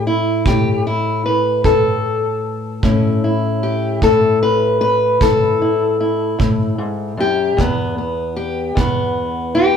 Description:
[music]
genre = acoustic country blues, solo or duo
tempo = 51 BPM (dotted quarters)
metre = 12/8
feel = straight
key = unclear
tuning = A4 = 440 Hz
[part]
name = fingerpicked steel-string acoustic guitar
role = melody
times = 0.0-9.8 s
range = E2 to B4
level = -15 LUFS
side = left 2 dB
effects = none
[part]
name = kick drum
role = drums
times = 0.5-9.0 s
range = none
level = -19 LUFS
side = right 3 dB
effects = none
[sound]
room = light reverb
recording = band playing live in one room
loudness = -14 LUFS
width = side -7 dB against mid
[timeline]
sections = 0.0-9.8 A section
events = none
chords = 0.0 A; 7.6 E5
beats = 0.46 1.65 | 2.83 4.02 5.21 6.39 | 7.58 8.77

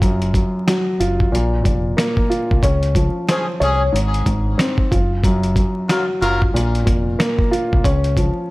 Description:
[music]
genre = hip hop, boom-bap hip-hop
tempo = 92 BPM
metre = 4/4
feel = swing 62% on 16ths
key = Db major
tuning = A4 = 440 Hz
[part]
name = dark baby grand piano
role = accompaniment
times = 0.0-8.5 s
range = Gb2 to Db5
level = -20 LUFS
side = equal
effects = cassette tape, high-pass filter, low-pass filter
[part]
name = deep dub fingered electric bass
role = bass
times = 0.0-8.3 s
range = F1 to Db2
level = -20 LUFS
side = equal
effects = none
[part]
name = dusty soul sampler-style drum kit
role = drums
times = 0.0-8.4 s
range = hi-hat, kick drum, snare drum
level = -19 LUFS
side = equal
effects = none
[part]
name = muted trumpet section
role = stabs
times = 3.3-6.4 s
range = Gb3 to Bb4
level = -24 LUFS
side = left 1 dB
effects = high-pass filter, low-pass filter, digital delay
[sound]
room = little or no reverb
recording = vinyl crackle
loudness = -15 LUFS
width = side -20 dB against mid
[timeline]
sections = 0.0-8.5 A section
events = none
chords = 0.0 N.C.; 1.3 Bb5; 2.6 Dbmaj7; 3.9 Ab; 4.9 Gbmaj7; 6.5 Bb5; 7.8 Db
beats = | 0.02 0.67 1.32 1.98 | 2.63 3.28 3.93 4.58 | 5.24 5.89 6.54 7.19 | 7.84 8.50

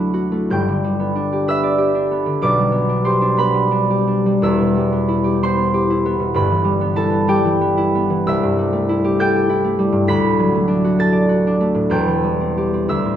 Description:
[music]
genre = classical, solo harp piece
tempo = 48-68 BPM (dotted quarters)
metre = 6/8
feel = rubato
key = G major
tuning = A4 = 440 Hz
[part]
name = concert harp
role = solo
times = 0.0-13.2 s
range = E1 to B6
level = -15 LUFS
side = equal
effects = none
[sound]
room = moderate concert hall reverb, RT60 2.1 s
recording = minimal, uncompressed stereo recording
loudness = -15 LUFS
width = side -10 dB against mid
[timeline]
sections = 0.5-13.2 A section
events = none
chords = 0.5 G; 2.4 G/B; 4.4 Em; 6.4 Em/G; 8.3 Am7/C; 10.1 D; 11.9 C/E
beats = | 0.49 1.48 | 2.43 3.39 | 4.44 5.42 | 6.36 7.28 | 8.28 9.20 | 10.09 11.00 | 11.91 12.86

